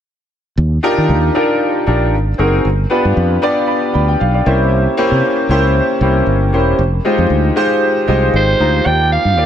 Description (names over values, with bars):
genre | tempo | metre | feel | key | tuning
polished 1980s jazz-funk pop | 116 BPM | 4/4 | swing 54% on 16ths | Eb major | A4 = 440 Hz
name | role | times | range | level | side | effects
fretless electric bass | bass | 0.6-9.5 s | E1 to Eb3 | -14 LUFS | equal | none
warm concert grand piano | accompaniment | 0.8-9.5 s | Ab3 to B5 | -14 LUFS | left 1 dB | analog chorus
raspy soprano saxophone | melody | 8.4-9.5 s | C5 to G5 | -14 LUFS | right 2 dB | none
room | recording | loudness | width
light reverb, small room ambience | none | -12 LUFS | side -9 dB against mid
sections
0.6-8.9 A section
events
grand piano fill 3.2-4.7, 7.8-8.9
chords
0.6 Ebmaj9; 2.1 Ab9; 2.6 G7; 4.5 C7b9; 6.8 Fm9; 8.9 Ebmaj9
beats
| 0.57 1.09 1.61 2.13 | 2.65 3.16 3.68 4.20 | 4.71 5.23 5.75 6.27 | 6.78 7.30 7.82 8.34 | 8.85 9.37